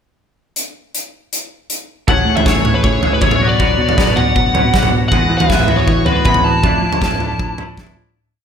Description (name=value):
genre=indie rock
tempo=158 BPM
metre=4/4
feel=straight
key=A major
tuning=A4 = 439 Hz
part: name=big rock drum kit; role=drums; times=0.6-8.0 s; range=hi-hat, kick drum, snare drum, toms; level=-15 LUFS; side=equal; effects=none
part: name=fuzz lead guitar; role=melody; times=2.1-7.8 s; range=B4 to B5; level=-17 LUFS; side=left 1 dB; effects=distortion, digital delay
part: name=twelve-string electric guitar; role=riff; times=2.1-8.2 s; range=B2 to C#5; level=-19 LUFS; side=equal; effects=double-tracked left and right
part: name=picked electric bass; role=bass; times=2.1-8.1 s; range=A1 to F3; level=-21 LUFS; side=equal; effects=none
room=moderate lush hall reverb, RT60 1.7 s, small room ambience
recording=big arena sound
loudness=-12 LUFS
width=side -7 dB against mid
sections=0.6-2.1 pickup bar; 2.1-8.2 interlude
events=fade-out 6.6-8.2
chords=0.6 N.C.; 2.1 Amaj7; 3.4 Bmadd9; 5.1 Eadd9; 6.6 Dmadd9/F